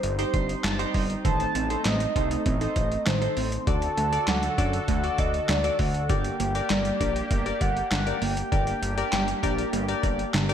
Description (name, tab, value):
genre	synth-pop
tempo	99 BPM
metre	4/4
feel	straight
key	G harmonic minor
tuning	A4 = 437 Hz
part	mellow horn-like synth lead	melody	0.0-10.3 s	C5 to A5	-30 LUFS	equal	chorus, ping-pong delay
part	warm analog pad	sustained chords	0.0-10.5 s	D3 to A4	-34 LUFS	right 1 dB	chorus
part	fat analog bass	bass	0.0-10.5 s	G1 to F#2	-29 LUFS	equal	none
part	boom bap sampler-style drum kit	drums	0.0-10.5 s	handclaps, hi-hat, kick drum, snare drum	-28 LUFS	equal	gated reverb
part	warm analog keys	accompaniment	0.2-10.5 s	Eb4 to C6	-31 LUFS	left 2 dB	chorus
part	wide unison pluck	arpeggios	1.2-10.5 s	D3 to D6	-33 LUFS	right 4 dB	none
room	moderate lush hall reverb, RT60 1.7 s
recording	bright 1980s-style digital production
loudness	-23 LUFS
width	side -9 dB against mid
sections	0.0-10.5 A section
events	synth keys fill 0.0-1.2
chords	0.0 Cm/G; 1.2 Adim; 3.7 D; 6.1 Gm